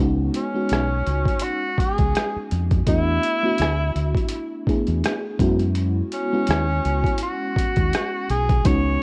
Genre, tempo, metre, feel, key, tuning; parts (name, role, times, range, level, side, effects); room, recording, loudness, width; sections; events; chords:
R&B, neo-soul; 83 BPM; 4/4; swing 56% on 16ths; A4 = 438 Hz
FM electric piano with soft pad layer; accompaniment; 0.0-9.0 s; Ab3 to Ab4; -28 LUFS; equal; chorus, tremolo
deep dub fingered electric bass; bass; 0.0-9.0 s; Cb2 to Gb2; -25 LUFS; equal
boom bap sampler-style drum kit; drums; 0.3-8.8 s; hi-hat, kick drum, rim click; -25 LUFS; equal; overdrive
warm tenor saxophone; melody; 0.4-9.0 s; Db4 to Db5; -27 LUFS; equal
digital ambience; worn, warbling old tape, cassette tape, warbly pitch drift; -22 LUFS; mono
0.0-9.0 A section
0.0 Db9sus4; 2.9 E9sus4; 5.4 Gb9sus4